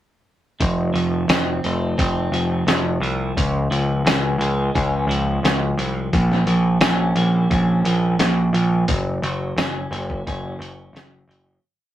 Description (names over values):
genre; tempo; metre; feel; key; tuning
quiet-loud alternative rock; 87 BPM; 4/4; straight; unclear; A4 = 440 Hz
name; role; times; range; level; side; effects
clean electric guitar; arpeggios; 0.6-11.6 s; F2 to Db4; -26 LUFS; right 2 dB; none
growling picked electric bass; bass; 0.6-11.6 s; F1 to Db2; -20 LUFS; equal; overdrive
lo-fi sampler-style drum kit; drums; 0.6-11.5 s; hi-hat, kick drum, snare drum; -21 LUFS; equal; none
room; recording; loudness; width
light reverb; rough rehearsal-room recording; -18 LUFS; side -12 dB against mid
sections
0.6-11.6 verse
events
fade-out 8.9-11.6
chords
0.6 F; 3.4 Db; 6.1 Bbm; 8.9 Gb